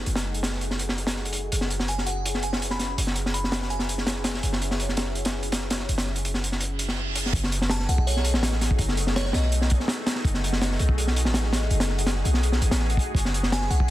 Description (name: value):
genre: drum and bass, jungle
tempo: 165 BPM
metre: 4/4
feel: straight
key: F# dorian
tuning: A4 = 440 Hz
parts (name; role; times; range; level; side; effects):
- lush unison pad; sustained chords; 0.0-13.9 s; A3 to G#4; -34 LUFS; left 1 dB; chorus, phaser
- warm 808-style bass; bass; 0.0-13.9 s; F#1 to B1; -26 LUFS; equal; none
- crunchy breakbeat drum kit; drums; 0.1-13.9 s; hi-hat, kick drum, snare drum; -26 LUFS; equal; high-pass filter on kick, high-pass filter on hats, high-pass filter on snare, high-pass filter on room
- glassy synth bell; melody; 1.9-4.1, 7.7-9.9, 13.5-13.9 s; C#5 to B5; -33 LUFS; equal; chorus, dub echo
- reverse cymbal; sound effects; 6.7-7.3 s; none; -33 LUFS; right 4 dB; none
room: small room ambience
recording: dense, heavily limited modern master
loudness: -22 LUFS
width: side -15 dB against mid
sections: 0.0-7.3 A section; 7.3-13.9 B section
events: reverse cymbal 6.7-7.3; drop 7.3-13.9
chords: 0.0 F#m69; 1.5 E69/F#; 7.3 F#m69; 13.2 E69/F#